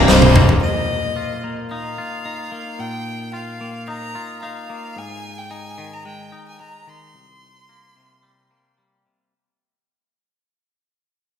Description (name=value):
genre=post-rock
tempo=110 BPM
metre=4/4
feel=straight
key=unclear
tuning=A4 = 438 Hz
part: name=felt-muted upright piano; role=arpeggios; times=0.0-0.6 s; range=Eb5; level=-27 LUFS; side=right 2 dB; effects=none
part: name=twangy electric guitar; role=arpeggios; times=0.0-9.3 s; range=C2 to F4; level=-28 LUFS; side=left 3 dB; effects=slapback echo, analog delay
part: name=crunchy overdriven guitar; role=riff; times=0.0-0.6 s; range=C2 to C3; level=-18 LUFS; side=equal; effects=slapback echo
part: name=growling fingered electric bass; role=bass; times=0.0-0.6 s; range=C1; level=-17 LUFS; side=equal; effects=overdrive
part: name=bright violin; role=melody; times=0.1-8.8 s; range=C5 to C6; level=-26 LUFS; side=left 2 dB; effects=analog delay
part: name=big rock drum kit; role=drums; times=0.1-0.6 s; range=snare drum, toms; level=-15 LUFS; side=equal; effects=none
room=moderate lush hall reverb, RT60 1.8 s, small room ambience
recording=big arena sound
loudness=-18 LUFS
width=side -8 dB against mid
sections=0.6-9.3 A section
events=drum fill 0.1-0.6; fade-out 0.6-9.3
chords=0.0 Cm7; 0.6 Bbsus4; 5.0 Ab5; 7.1 C5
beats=0.09 | 0.62 1.16 1.70 2.25 | 2.79 3.33 3.88 4.42 | 4.96 5.51 6.05 6.60 | 7.14 7.69 8.24 8.78